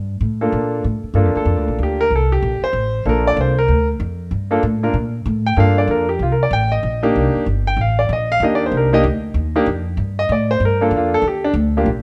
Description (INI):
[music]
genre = jazz piano trio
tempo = 190 BPM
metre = 4/4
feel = swing 62% on 8ths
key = G minor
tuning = A4 = 438 Hz
[part]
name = upright bass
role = bass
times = 0.0-12.0 s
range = G1 to Bb2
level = -21 LUFS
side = equal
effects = none
[part]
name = clear concert grand piano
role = melody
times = 0.4-11.9 s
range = Bb3 to G5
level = -20 LUFS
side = equal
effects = none
[sound]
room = moderate large studio reverb, RT60 1.2 s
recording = none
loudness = -18 LUFS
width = mono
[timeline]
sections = 0.0-1.2 A section; 1.2-12.0 B section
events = grand piano solo 1.2-12.0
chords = 0.0 Gm7; 6.2 Cm7; 10.0 Gm7; 11.2 Ebmaj7